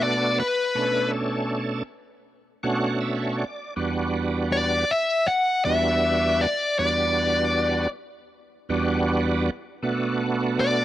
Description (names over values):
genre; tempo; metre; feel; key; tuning
blues; 79 BPM; 4/4; swing 54% on 16ths; unclear; A4 = 439 Hz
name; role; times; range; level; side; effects
dark smooth lead guitar; melody; 0.0-10.8 s; B4 to F#5; -22 LUFS; left 2 dB; overdrive
bright tonewheel organ; accompaniment; 0.0-10.8 s; E2 to F#5; -24 LUFS; right 2 dB; slow rotary speaker, overdrive, chorus vibrato
room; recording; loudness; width
little or no reverb; dry, close 1970s-style studio recording; -21 LUFS; side -13 dB against mid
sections
0.0-10.8 A section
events
tonewheel organ fill 2.3-3.8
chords
0.0 Bm7; 3.8 Em7; 9.8 Bm7